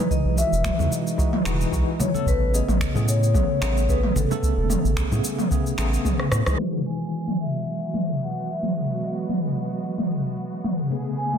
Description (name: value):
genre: sunset chillout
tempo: 111 BPM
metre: 4/4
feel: swing 55% on 16ths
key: E major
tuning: A4 = 441 Hz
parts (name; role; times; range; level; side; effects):
- vibraphone with soft mallets; melody; 0.0-11.4 s; A4 to G#5; -30 LUFS; left 4 dB; tape echo
- tine electric piano; accompaniment; 0.0-11.4 s; C#3 to A4; -28 LUFS; moving between left 3 dB and right 7 dB; overdrive, fast stereo tremolo, auto-pan, tape echo
- deep house drum kit; drums; 0.1-11.4 s; finger snaps, hi-hat, rim click, shaker, toms; -26 LUFS; left 1 dB; soft clipping on snare
- electronic kick drum; drums; 0.1-6.2 s; none; -25 LUFS; equal; none
- round analog bass; bass; 0.3-6.6 s; E1 to A2; -23 LUFS; equal; none
- congas; percussion; 0.8-6.6 s; none; -33 LUFS; equal; none
- clear studio string section; sustained chords; 6.6-11.4 s; C#3 to G#4; -31 LUFS; right 3 dB; none
room: moderate concert hall reverb, RT60 2.0 s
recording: dense, heavily limited modern master, low-pass filter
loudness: -21 LUFS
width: side -8 dB against mid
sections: 0.0-6.6 A section; 6.6-11.4 B section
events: drum fill 6.2-6.6; band accent 6.5; filter sweep 6.6-11.4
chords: 0.0 Emaj9; 2.3 Amaj9; 6.6 Emaj9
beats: | 0.10 0.65 1.19 1.73 | 2.27 2.81 3.35 3.89 | 4.43 4.97 5.51 6.05 | 6.59 7.13 7.67 8.21 | 8.75 9.29 9.83 10.38 | 10.91